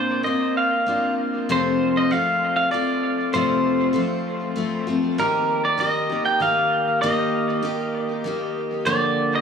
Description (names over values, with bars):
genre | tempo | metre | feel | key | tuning
rock | 98 BPM | 3/4 | straight | F mixolydian | A4 = 439 Hz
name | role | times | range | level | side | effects
electric guitar through a small old amp | melody | 0.0-9.4 s | Bb4 to G5 | -22 LUFS | right 1 dB | dub echo
picked steel-string acoustic guitar | accompaniment | 0.0-9.4 s | F2 to G4 | -23 LUFS | left 2 dB | dub echo
room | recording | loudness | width
light reverb, small room ambience | echo-heavy mix, studio reverb | -19 LUFS | side -6 dB against mid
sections
0.0-1.5 A section; 1.5-9.4 B section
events
none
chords
0.0 Bbadd9; 1.5 F; 5.2 Eb; 8.9 Bb6/D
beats
0.24 0.86 | 1.48 2.10 2.71 | 3.33 3.95 4.56 | 5.17 5.79 6.40 | 7.02 7.63 8.24 | 8.86